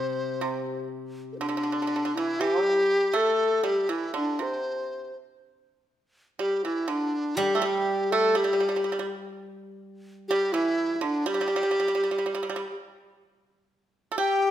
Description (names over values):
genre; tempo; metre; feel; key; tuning
chinese traditional, Chinese chamber ensemble; 61 BPM; 2/4; rubato; G zhi mode; A4 = 441 Hz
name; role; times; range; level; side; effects
reedy large dizi; melody; 0.0-14.5 s; D4 to G5; -25 LUFS; equal; none
pipa; second line; 0.0-14.5 s; C3 to A4; -30 LUFS; right 5 dB; none
steel-string zither; accompaniment; 0.0-2.4, 7.4-10.3 s; C3 to G3; -34 LUFS; left 2 dB; none
breathy mellow low xiao; second line; 14.2-14.5 s; G4; -25 LUFS; left 8 dB; none
room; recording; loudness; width
moderate recital hall reverb, RT60 1.5 s; none; -24 LUFS; side -11 dB against mid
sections
0.0-13.2 A section; 13.2-14.5 B section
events
none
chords
none